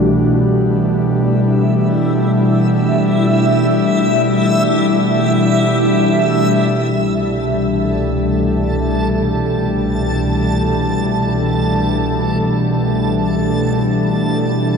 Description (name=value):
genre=ambient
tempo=free time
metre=none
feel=none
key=C major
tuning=A4 = 440 Hz
part: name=airy breathy pad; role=sustained chords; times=0.0-14.8 s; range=C2 to D4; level=-14 LUFS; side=left 1 dB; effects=chorus
part: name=muted felt-like synth keys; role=arpeggios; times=0.0-7.5 s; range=E3 to D5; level=-24 LUFS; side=equal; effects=chorus, diffuse ambient delay
part: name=backwards swelling texture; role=texture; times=0.3-14.8 s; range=E4 to A5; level=-20 LUFS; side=right 1 dB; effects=built-in reverb
room=wet huge ambient reverb, RT60 7.7 s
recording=dark, warm production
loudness=-13 LUFS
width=side -6 dB against mid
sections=0.0-6.9 A section; 6.9-14.8 B section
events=fade-out on synth keys 0.0-6.9; filter sweep on analog synth pad 0.0-6.9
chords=0.3 A5; 6.9 Cmaj7; 13.4 A5